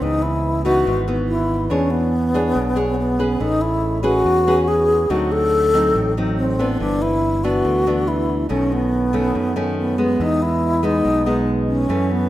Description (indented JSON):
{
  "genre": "bossa nova",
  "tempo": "142 BPM",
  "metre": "4/4",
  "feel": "straight",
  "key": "E major",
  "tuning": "A4 = 439 Hz",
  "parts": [
    { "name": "breathy wooden-headed alto flute", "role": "melody", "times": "0.0-12.3 s", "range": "B3 to A4", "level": "-19 LUFS", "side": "equal", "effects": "none" },
    { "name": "nylon-string guitar", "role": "accompaniment", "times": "0.0-12.3 s", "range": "F#2 to C#5", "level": "-22 LUFS", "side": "equal", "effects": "none" },
    { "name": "fingered electric bass", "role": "bass", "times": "0.0-12.3 s", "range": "G1 to F#2", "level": "-24 LUFS", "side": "right 1 dB", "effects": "none" }
  ],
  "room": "moderate plate reverb, RT60 2.8 s",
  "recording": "rough home demo mix",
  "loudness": "-16 LUFS",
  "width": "side -14 dB against mid",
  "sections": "0.0-12.3 A section",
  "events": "none",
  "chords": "0.0 C#m9; 1.7 E6; 3.4 Amaj9; 5.1 D7b9; 6.8 G6; 8.5 B9; 10.2 Emaj7"
}